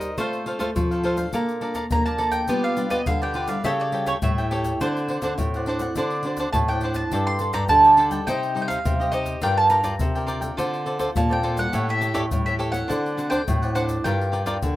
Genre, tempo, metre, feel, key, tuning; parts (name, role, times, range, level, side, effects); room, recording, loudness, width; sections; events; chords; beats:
samba and choro; 104 BPM; 4/4; straight; G minor; A4 = 440 Hz
mandolin; melody; 0.0-14.8 s; C5 to C6; -22 LUFS; right 2 dB
cavaquinho; accompaniment; 0.0-14.6 s; D4 to Bb5; -28 LUFS; equal
nylon-string guitar; accompaniment; 0.0-14.8 s; A2 to Bb4; -35 LUFS; left 4 dB
nylon-string guitar; bass; 0.0-14.8 s; G2 to B3; -25 LUFS; equal
egg shaker, surdo and pandeiro; percussion; 0.0-14.8 s; -29 LUFS; left 1 dB
moderate studio reverb, RT60 0.6 s; rough home demo mix; -20 LUFS; side -15 dB against mid
0.0-14.8 A section
0.2 F/A; 1.3 Bbmaj7; 2.5 G7/B; 3.6 A7/C#; 4.8 D7; 7.1 Gsus2; 8.3 Cm; 9.4 Gm7; 10.6 Dm7; 11.7 A7; 12.9 D7; 14.1 Gm7
| 0.18 0.76 1.33 1.91 | 2.49 3.07 3.65 4.22 | 4.80 5.38 5.96 6.54 | 7.12 7.69 8.27 8.85 | 9.43 10.01 10.59 11.16 | 11.74 12.32 12.90 13.47 | 14.05 14.63